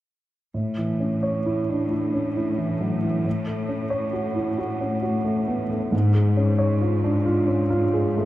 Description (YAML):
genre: cinematic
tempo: 45 BPM (dotted quarters)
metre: 6/8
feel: rubato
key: A major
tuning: A4 = 440 Hz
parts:
  - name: warm baby grand piano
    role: accompaniment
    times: 0.5-8.3 s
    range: G#2 to C#5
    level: -22 LUFS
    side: equal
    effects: none
  - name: rich studio cello section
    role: bass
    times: 0.6-8.3 s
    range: G#2 to A2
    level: -28 LUFS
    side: left 1 dB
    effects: none
room: moderate scoring stage reverb, RT60 1.6 s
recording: none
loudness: -21 LUFS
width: side -15 dB against mid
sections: 0.6-8.3 A section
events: none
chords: 0.6 A; 3.3 F#m/A; 5.9 C#/G#